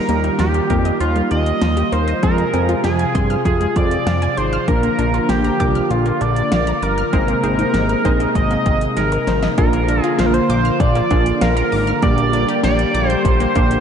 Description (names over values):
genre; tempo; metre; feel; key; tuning
synth-pop; 98 BPM; 4/4; straight; unclear; A4 = 440 Hz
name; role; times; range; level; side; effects
octave-doubled lead; melody; 0.0-13.8 s; F4 to Eb5; -20 LUFS; right 2 dB; chorus, ping-pong delay
funky polysynth comp; accompaniment; 0.0-13.8 s; F3 to Eb5; -24 LUFS; equal; chorus
warm analog pad; sustained chords; 0.0-13.8 s; C3 to Ab4; -22 LUFS; equal; chorus
wide unison pluck; arpeggios; 0.0-13.7 s; F3 to G6; -27 LUFS; left 2 dB; ping-pong delay
fat analog bass; bass; 0.1-13.8 s; G1 to G2; -20 LUFS; equal; none
pop drum kit; drums; 0.1-13.8 s; hi-hat, kick drum, snare drum; -22 LUFS; equal; overdrive
room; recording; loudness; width
wet lush hall reverb, RT60 2.6 s; dreamy mix soaked in reverb, nothing above 10.9 kHz; -14 LUFS; side -8 dB against mid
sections
0.0-9.6 A section; 9.6-13.8 B section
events
drum fill 9.0-9.6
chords
0.0 Ebadd9; 2.2 Fm; 4.7 Bb; 7.1 Abadd9; 9.6 Bb; 12.0 Gm/Bb